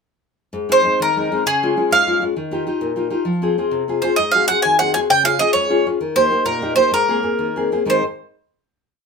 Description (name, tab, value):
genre	italian folk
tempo	131 BPM (dotted quarters)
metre	6/8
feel	straight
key	Ab major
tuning	A4 = 442 Hz
part	nylon-string guitar	accompaniment	0.5-8.0 s	Ab2 to Bb4	-20 LUFS	left 4 dB	none
part	bowl-back mandolin	melody	0.7-8.0 s	Ab4 to Ab5	-16 LUFS	right 2 dB	none
room	moderate studio reverb, RT60 0.6 s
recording	minimal, uncompressed stereo recording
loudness	-15 LUFS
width	side -5 dB against mid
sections	0.5-7.9 A section; 7.9-8.8 final chord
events	none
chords	0.5 Ab; 1.4 Db; 2.4 Ebadd9; 3.3 Fm; 4.2 Ab7; 5.1 Db; 6.0 Eb; 6.9 Abadd9